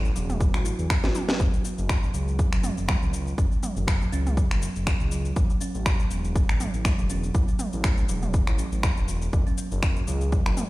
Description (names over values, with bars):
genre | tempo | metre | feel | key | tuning
afro house | 121 BPM | 4/4 | swing 55% on 16ths | F# minor | A4 = 435 Hz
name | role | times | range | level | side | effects
kalimba | arpeggios | 0.0-10.6 s | E3 to F#4 | -32 LUFS | right 2 dB | sidechain pumping, digital delay
dark detuned saw bass | bass | 0.0-10.6 s | E1 to E2 | -28 LUFS | equal | sidechain pumping
house drum kit | drums | 0.1-10.7 s | finger snaps, shaker, snare drum, toms | -30 LUFS | equal | none
electronic kick drum | drums | 0.4-10.4 s | none | -23 LUFS | equal | none
room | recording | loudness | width
digital ambience | played on a big sound system in a bare room, stone room reverb | -22 LUFS | side -18 dB against mid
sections
0.0-10.7 A section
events
drum fill 1.0-1.4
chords
0.0 A5; 1.4 F#5; 5.4 A; 9.3 F#5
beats
0.41 0.90 | 1.40 1.89 2.39 2.88 | 3.38 3.88 4.37 4.87 | 5.36 5.86 6.36 6.85 | 7.35 7.84 8.34 8.84 | 9.33 9.83 10.32